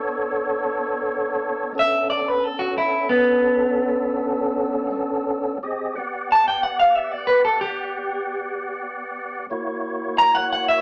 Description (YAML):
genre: blues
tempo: 62 BPM (dotted quarters)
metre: 12/8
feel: straight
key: B minor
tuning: A4 = 440 Hz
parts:
  - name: tonewheel organ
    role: sustained chords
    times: 0.0-10.8 s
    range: A#3 to F#5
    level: -28 LUFS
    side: equal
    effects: slow rotary speaker, overdrive, chorus vibrato
  - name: clean electric guitar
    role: melody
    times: 1.8-10.8 s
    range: B3 to A#5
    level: -21 LUFS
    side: equal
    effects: none
room: wet studio reverb, RT60 0.5 s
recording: none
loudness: -22 LUFS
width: mono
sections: 0.0-10.8 A section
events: clean electric guitar solo 0.0-10.8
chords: 0.0 Bm9; 5.6 Gmaj7; 9.5 F#7